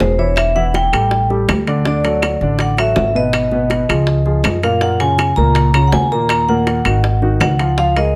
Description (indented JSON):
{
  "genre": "Afro-Cuban jazz",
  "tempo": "162 BPM",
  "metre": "4/4",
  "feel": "straight",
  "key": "unclear",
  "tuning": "A4 = 440 Hz",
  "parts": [
    { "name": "vibraphone with medium hard mallets", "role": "melody", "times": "0.0-8.2 s", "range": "C5 to Bb5", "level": "-20 LUFS", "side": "equal", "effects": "tape echo" },
    { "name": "warm upright piano", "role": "accompaniment", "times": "0.0-8.2 s", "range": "Bb2 to F5", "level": "-21 LUFS", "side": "equal", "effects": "none" },
    { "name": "upright bass", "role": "bass", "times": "0.0-8.2 s", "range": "Fb1 to Gb2", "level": "-20 LUFS", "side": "equal", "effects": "none" },
    { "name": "bongos", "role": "percussion", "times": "0.0-8.1 s", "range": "none", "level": "-27 LUFS", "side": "equal", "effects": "none" },
    { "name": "timbales", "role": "percussion", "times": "0.0-8.1 s", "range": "none", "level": "-25 LUFS", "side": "equal", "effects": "none" },
    { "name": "claves", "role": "percussion", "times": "0.4-7.6 s", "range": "none", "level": "-26 LUFS", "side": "equal", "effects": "none" }
  ],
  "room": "light reverb",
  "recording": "none",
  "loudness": "-15 LUFS",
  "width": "mono",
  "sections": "0.0-8.2 A section",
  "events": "none",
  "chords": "0.4 Em; 1.1 A7sus4; 1.9 D; 3.3 Abm; 4.1 Db; 4.8 Gbmaj7; 6.3 Ebm; 7.0 Ab5",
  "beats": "0.01 | 0.38 0.75 1.12 1.49 | 1.86 2.23 2.60 2.97 | 3.34 3.71 4.08 4.45 | 4.82 5.19 5.56 5.93 | 6.30 6.67 7.04 7.41 | 7.78 8.15"
}